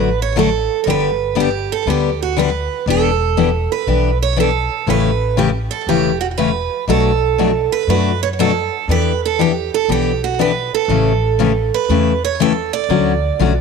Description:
acoustic string swing (jazz manouche); 120 BPM; 4/4; swing 65% on 8ths; A4 = 440 Hz
picked steel-string acoustic guitar; melody; 0.0-13.6 s; F#4 to D5; -18 LUFS; right 13 dB; slapback echo
picked steel-string acoustic guitar; accompaniment; 0.0-13.5 s; B2 to G4; -18 LUFS; left 11 dB
upright bass; bass; 0.0-13.6 s; E1 to F#2; -20 LUFS; equal
light reverb; 1960s-style stereo with parts hard left and right; -14 LUFS; side -5 dB against mid
0.0-13.6 A section
0.0 D; 0.9 G; 2.9 Em7; 4.9 A7; 6.9 Bm7; 8.9 Em7; 10.9 A7; 12.9 Dmaj7
0.36 | 0.86 1.36 1.86 2.37 | 2.87 3.37 3.87 4.37 | 4.87 5.37 5.87 6.37 | 6.87 7.38 7.88 8.38 | 8.88 9.38 9.88 10.38 | 10.88 11.39 11.89 12.39 | 12.89 13.39

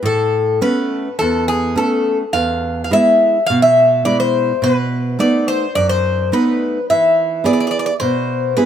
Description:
greek folk; 106 BPM; 4/4; straight; A4 = 439 Hz
Greek bouzouki; melody; 0.0-8.7 s; G#4 to F5; -15 LUFS; left 1 dB
nylon-string guitar; accompaniment; 0.0-8.7 s; E2 to G#4; -18 LUFS; right 2 dB
light reverb; -13 LUFS; side -9 dB against mid
0.0-8.7 A section
speeding up 0.0-8.7
0.0 Aadd9; 2.3 E; 4.6 B7; 6.9 E
| 0.03 0.61 1.19 1.77 | 2.34 2.92 3.49 4.06 | 4.63 5.20 5.76 6.33 | 6.89 7.45 8.01 8.57

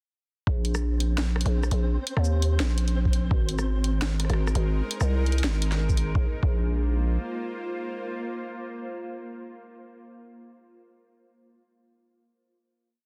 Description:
half-time drum and bass; 169 BPM; 4/4; swing 56% on 16ths, half-time; A4 = 443 Hz
growling 808-style bass; bass; 0.5-7.2 s; Ab1 to Eb2; -26 LUFS; equal
electronic kick drum; drums; 0.5, 3.1-3.4, 5.9-6.5 s; -27 LUFS; equal; small room ambience
flickering grainy texture; texture; 0.7-6.2 s; C4 to C5; -43 LUFS; equal; built-in reverb
drum and bass drum kit; drums; 0.6-6.1 s; hi-hat, rim click, shaker, snare drum; -35 LUFS; equal; small room ambience
bowed-like drone; sustained chords; 4.2-9.8 s; Ab3 to C5; -38 LUFS; equal; built-in reverb, sidechain pumping
digital ambience; dense, heavily limited modern master; -26 LUFS; mono
0.5-6.2 drop; 6.2-9.0 final chord
drop 0.5-6.2
0.5 Bbsus2; 3.3 Ab; 6.2 Bb5
| 0.47 0.82 1.18 1.53 | 1.89 2.25 2.60 2.96 | 3.31 3.67 4.02 4.38 | 4.73 5.09 5.44 5.80 | 6.15 6.51 6.86 7.22 | 7.57 7.93 8.28 8.64

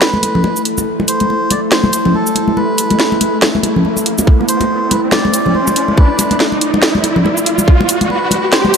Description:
deep dubstep; 141 BPM; 4/4; swing 57% on 16ths, half-time; A minor; A4 = 440 Hz
melodica; melody; 0.0-8.8 s; A4 to D5; -20 LUFS; equal; dub echo
bowed-like drone; sustained chords; 0.0-8.8 s; A3 to D5; -18 LUFS; equal; built-in reverb
garage drum kit; drums; 0.0-8.8 s; hi-hat, shaker, snare drum; -16 LUFS; equal
riser; sound effects; 0.6-8.8 s; -20 LUFS; right 1 dB
congas; percussion; 0.1-8.7 s; -17 LUFS; left 2 dB
electronic kick drum; drums; 4.3-7.8 s; -8 LUFS; equal
moderate huge ambient reverb, RT60 4.3 s; -11 LUFS; side -6 dB against mid
0.0-8.8 A section
build-up 0.0-8.8; filter sweep on synth drone 0.0-8.8; riser 0.6-8.8
0.0 Amadd9
0.02 0.44 | 0.87 1.29 1.72 2.15 | 2.57 3.00 3.42 3.85 | 4.27 4.70 5.12 5.55 | 5.97 6.40 6.83 7.25 | 7.68 8.10 8.53

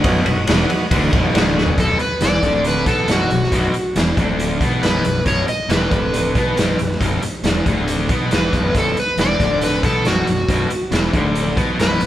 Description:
blues rock power trio and southern rock; 138 BPM; 4/4; straight; A4 = 440 Hz
overdriven tonewheel organ; sustained chords; 0.0-1.7 s; F#4 to F#5; -24 LUFS; right 2 dB; slow rotary speaker, chorus vibrato
sludgy distorted guitar; riff; 0.0-12.1 s; B1 to B3; -20 LUFS; left 1 dB; overdrive
fuzz fingered electric bass; bass; 0.0-12.1 s; B0 to B1; -23 LUFS; equal; overdrive
raw garage drum kit; drums; 0.0-12.1 s; hi-hat, kick drum, ride cymbal, snare drum, toms; -19 LUFS; equal
overdriven slide guitar; melody; 1.8-12.1 s; F#4 to D#5; -20 LUFS; equal
moderate large studio reverb, RT60 1.5 s; band playing live in one room; -15 LUFS; side -13 dB against mid
0.0-1.8 A section; 1.8-12.1 B section
drum fill 1.6
0.0 B; 1.8 N.C.
| 0.05 0.48 0.92 1.35 | 1.78 2.22 2.65 3.09 | 3.52 3.96 4.39 4.83 | 5.26 5.70 6.13 6.57 | 7.00 7.44 7.88 8.31 | 8.75 9.18 9.62 10.05 | 10.48 10.92 11.36 11.79

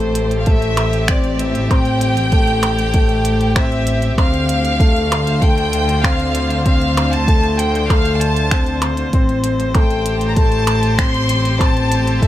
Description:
piano and strings electronica; 97 BPM; 4/4; straight; D minor; A4 = 440 Hz
rich chamber violin section; melody; 0.0-12.3 s; C5 to C6; -21 LUFS; equal
rich string quartet; sustained chords; 0.0-12.3 s; A2 to C5; -26 LUFS; right 1 dB; sidechain pumping
dark baby grand piano; riff; 0.0-12.3 s; A3 to C4; -20 LUFS; left 3 dB
rich symphonic double bass section; bass; 0.0-12.3 s; A1 to D2; -19 LUFS; equal; sidechain pumping
minimal click drum kit; drums; 0.0-12.3 s; finger snaps, hi-hat, percussion blips; -23 LUFS; right 1 dB
electronic kick drum; drums; 0.5-12.3 s; -15 LUFS; equal
light reverb, small room ambience; -13 LUFS; side -13 dB against mid
0.0-12.3 A section
0.0 Am7; 4.2 Dm7; 9.1 Am7
0.47 1.09 | 1.71 2.33 2.94 3.56 | 4.18 4.80 5.42 6.04 | 6.66 7.28 7.89 8.51 | 9.13 9.75 10.37 10.99 | 11.61 12.22

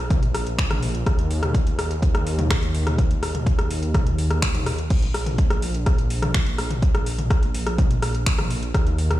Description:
melodic techno; 125 BPM; 4/4; straight; A4 = 440 Hz
dark detuned saw bass; bass; 0.0-9.2 s; Bb1 to Eb2; -24 LUFS; equal; sidechain pumping
deep house drum kit; drums; 0.1-9.2 s; crash cymbal, finger snaps, hi-hat, rim click, toms; -26 LUFS; left 1 dB; overdrive
electronic kick drum; drums; 0.1-8.8 s; -20 LUFS; equal; overdrive
little or no reverb; played on a big sound system in a bare room, stone room reverb; -19 LUFS; side -15 dB against mid
0.0-9.2 A section
0.10 0.58 | 1.06 1.54 2.02 2.50 | 2.98 3.46 3.94 4.42 | 4.90 5.38 5.86 6.34 | 6.82 7.30 7.78 8.26 | 8.74

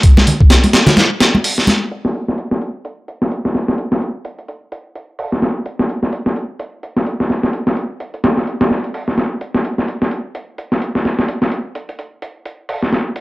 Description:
breakbeat; 128 BPM; 4/4; swing 58% on 16ths
breakbeat sampler-style drum kit; drums; 0.0-13.2 s; hi-hat, kick drum, snare drum; -14 LUFS; equal; low-pass filter on snare, low-pass filter on hats, low-pass filter on kick
congas; percussion; 0.2-1.8 s; -15 LUFS; equal
light reverb; dry, gritty hardware recording; -14 LUFS; side -20 dB against mid
0.0-1.9 A section; 1.9-13.2 B section
| 0.03 0.50 0.97 1.44 | 1.91 2.38 2.85 3.31 | 3.78 4.25 4.72 5.19 | 5.66 6.13 6.59 7.06 | 7.53 8.00 8.47 8.94 | 9.41 9.88 10.35 10.81 | 11.28 11.75 12.22 12.69 | 13.16

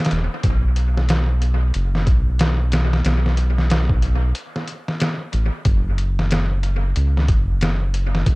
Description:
trip hop; 92 BPM; 4/4; swing 60% on 16ths; A4 = 440 Hz
trip hop sampler-style drum kit; drums; 0.0-8.4 s; hi-hat, kick drum, snare drum; -21 LUFS; equal; vintage 12-bit sampler grit, dub echo
round analog bass; bass; 0.1-8.4 s; E1 to C#2; -18 LUFS; equal
little or no reverb; echo-heavy mix; -17 LUFS; side -24 dB against mid
0.4-8.4 A section
| 0.44 1.09 1.74 2.39 | 3.05 3.70 4.35 5.00 | 5.66 6.31 6.96 7.61 | 8.26

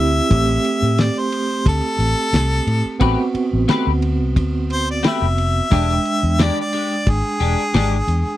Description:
straight-eighth soul blues; 89 BPM; 4/4; swing 55% on 16ths; A dorian; A4 = 442 Hz
clear harmonica; melody; 0.0-8.4 s; G#4 to E5; -22 LUFS; left 1 dB
overdriven tine electric piano; accompaniment; 0.0-8.4 s; G#3 to G5; -22 LUFS; right 4 dB; fast tremolo
vintage muted fingered electric bass; bass; 0.0-8.3 s; E1 to A2; -19 LUFS; equal
cloth-damped thuddy drum kit; drums; 0.3-8.3 s; kick drum, ride cymbal, snare drum; -18 LUFS; left 1 dB
clean electric guitar; stabs; 3.0-8.0 s; E3 to B4; -22 LUFS; left 8 dB; analog chorus
little or no reverb; dry, close 1970s-style studio recording; -16 LUFS; side -14 dB against mid
0.0-8.4 A section
harmonica solo 0.0-8.4
0.3 Am9; 5.7 E7#9
| 0.31 0.98 1.66 2.33 | 3.01 3.69 4.36 5.04 | 5.71 6.39 7.07 7.74

